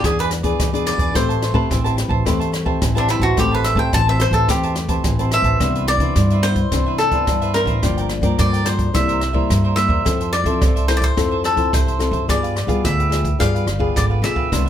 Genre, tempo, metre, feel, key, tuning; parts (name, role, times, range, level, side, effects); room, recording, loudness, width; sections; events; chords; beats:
samba and choro; 108 BPM; 4/4; straight; A minor, C major from 5.6 s; A4 = 440 Hz
cavaquinho; melody; 0.0-14.7 s; D4 to A5; -21 LUFS; equal
cavaquinho; accompaniment; 0.0-14.7 s; D4 to A5; -27 LUFS; right 8 dB
nylon-string guitar; accompaniment; 0.0-14.7 s; G2 to B4; -23 LUFS; left 5 dB
upright bass; bass; 0.0-14.7 s; G1 to G3; -20 LUFS; right 1 dB
open jazz drum kit; drums; 0.0-14.7 s; hi-hat, kick drum, rim click; -22 LUFS; equal
light reverb; -15 LUFS; side -10 dB against mid
0.0-5.6 A section; 5.6-14.7 B section
cavaquinho solo 0.0-5.6
0.0 E7; 1.2 Am9; 5.6 Cmaj9; 7.8 Gm7; 8.9 C7; 10.1 Fmaj7; 12.3 G7b9
0.04 0.60 | 1.15 1.71 2.26 2.82 | 3.38 3.93 4.49 5.04 | 5.60 6.16 6.71 7.27 | 7.83 8.39 8.94 9.50 | 10.06 10.62 11.17 11.73 | 12.29 12.85 13.40 13.96 | 14.52